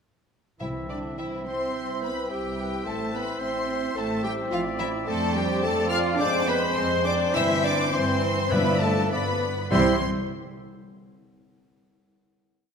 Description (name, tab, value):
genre	quick classical-period movement for symphony orchestra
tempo	97-110 BPM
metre	4/4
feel	rubato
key	C major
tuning	A4 = 440 Hz
part	clear studio violin section	melody	0.6-10.0 s	D5 to F6	-31 LUFS	left 2 dB	none
part	mellow hollow large flute ensemble	second line	0.6-10.0 s	D4 to F5	-36 LUFS	left 1 dB	none
part	rich chamber violin section	second line	0.6-10.0 s	D4 to F5	-33 LUFS	left 5 dB	none
part	warm clarinet	second line	0.6-10.0 s	D4 to F5	-32 LUFS	left 1 dB	none
part	warm oboe	second line	0.6-10.0 s	C5 to E5	-36 LUFS	equal	none
part	mellow bassoon	accompaniment	0.6-10.0 s	E3 to C4	-33 LUFS	right 2 dB	none
part	warm French horn section	sustained chords	0.6-10.0 s	E3 to E4	-33 LUFS	left 1 dB	none
part	clear chamber double bass section	bass	0.6-10.0 s	A1 to G2	-32 LUFS	right 4 dB	none
part	rich chamber cello section	bass	0.6-10.0 s	D3 to F4	-32 LUFS	right 2 dB	none
part	timpani	percussion	0.6-1.4, 7.4-10.0 s	G2 to C3	-30 LUFS	equal	none
part	rich chamber viola section	accompaniment	1.7-10.0 s	E4 to E5	-34 LUFS	left 2 dB	none
room	wet concert hall reverb, RT60 1.7 s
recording	none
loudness	-23 LUFS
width	side -6 dB against mid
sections	0.6-9.7 A section; 9.7-12.1 final chord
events	none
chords	0.6 C; 2.9 Am; 5.1 Dm7/F; 6.2 Dm7b5/F; 7.4 C/G; 8.5 G7; 9.7 C